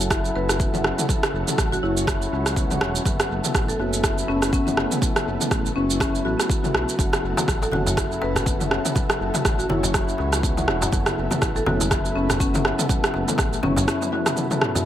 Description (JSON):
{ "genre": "afro house", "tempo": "122 BPM", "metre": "4/4", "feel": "swing 57% on 16ths", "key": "unclear", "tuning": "A4 = 439 Hz", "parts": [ { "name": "marimba with medium mallets", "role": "melody", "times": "0.0-14.6 s", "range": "C#4 to B4", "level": "-29 LUFS", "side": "left 1 dB", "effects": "dub echo" }, { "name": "ethereal airy pad", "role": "sustained chords", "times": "0.0-14.8 s", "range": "F#3 to A4", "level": "-34 LUFS", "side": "equal", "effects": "ensemble chorus, built-in reverb, sidechain pumping" }, { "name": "handpan", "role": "arpeggios", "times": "0.0-14.8 s", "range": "C#3 to F#4", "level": "-29 LUFS", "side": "equal", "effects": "sidechain pumping, dub echo" }, { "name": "mellow tonewheel organ", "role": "stabs", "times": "0.0-14.8 s", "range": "B3 to C#5", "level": "-30 LUFS", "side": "left 2 dB", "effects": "overdrive, fast rotary speaker, sidechain pumping, dub echo" }, { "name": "smooth synth bass", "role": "bass", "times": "0.0-13.9 s", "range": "E1 to C#2", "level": "-28 LUFS", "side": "equal", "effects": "sidechain pumping" }, { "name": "deep house drum kit", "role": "drums", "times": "0.0-14.8 s", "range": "rim click, shaker, toms", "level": "-24 LUFS", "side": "right 1 dB", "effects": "dub echo" }, { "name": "electronic kick drum", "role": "drums", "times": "0.1-13.5 s", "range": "none", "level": "-25 LUFS", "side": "equal", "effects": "none" }, { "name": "darbuka", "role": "percussion", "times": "7.1-14.8 s", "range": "none", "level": "-32 LUFS", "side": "left 1 dB", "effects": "dub echo" }, { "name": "congas", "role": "percussion", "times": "7.4-13.9 s", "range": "none", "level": "-29 LUFS", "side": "equal", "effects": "none" } ], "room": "light reverb, small room ambience", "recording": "echo-heavy mix", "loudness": "-20 LUFS", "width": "side -11 dB against mid", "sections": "0.0-14.9 A section", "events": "drop 0.0-14.9; drum fill 13.9-14.9", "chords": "0.0 F#m7; 3.1 Asus2/F#; 7.0 F#m7; 10.9 Asus2/F#", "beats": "0.11 0.60 | 1.09 1.58 2.07 2.56 | 3.06 3.55 4.04 4.53 | 5.02 5.52 6.01 6.50 | 6.99 7.48 7.97 8.47 | 8.96 9.45 9.94 10.43 | 10.93 11.42 11.91 12.40 | 12.89 13.38 13.88 14.37" }